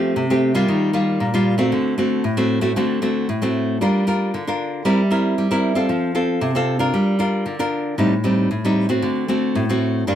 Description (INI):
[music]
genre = samba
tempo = 115 BPM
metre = 4/4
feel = straight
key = unclear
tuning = A4 = 439 Hz
[part]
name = nylon-string guitar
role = solo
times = 0.0-10.2 s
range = G2 to Bb4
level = -17 LUFS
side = equal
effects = none
[sound]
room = moderate studio reverb, RT60 0.7 s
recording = band playing live in one room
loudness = -17 LUFS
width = side -10 dB against mid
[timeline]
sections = 0.0-10.2 A section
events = none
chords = 0.0 Fadd9; 0.7 Ebadd9; 1.7 D7; 3.8 Gm7; 4.8 C7/G; 5.9 F; 6.9 Gm7; 8.0 Am7b5; 9.0 D7